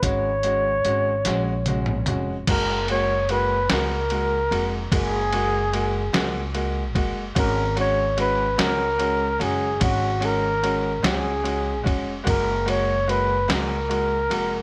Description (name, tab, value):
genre	six-eight pop ballad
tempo	49 BPM (dotted quarters)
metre	6/8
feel	straight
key	F# major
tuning	A4 = 440 Hz
part	breathy flugelhorn	melody	0.0-14.6 s	F#4 to C#5	-26 LUFS	equal	none
part	clear upright piano	accompaniment	0.0-14.6 s	G#3 to F#4	-30 LUFS	equal	none
part	upright bass	bass	0.0-14.6 s	E#1 to C#2	-30 LUFS	equal	none
part	trip hop sampler-style drum kit	drums	0.0-14.5 s	crash cymbal, hi-hat, kick drum, ride cymbal, snare drum, toms	-30 LUFS	equal	overdrive
room	light reverb, small room ambience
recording	none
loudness	-23 LUFS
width	mono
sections	0.0-2.5 A section; 2.5-14.6 B section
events	drum fill 1.2-2.5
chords	0.0 F#add9; 7.4 C#sus4; 12.3 F#add9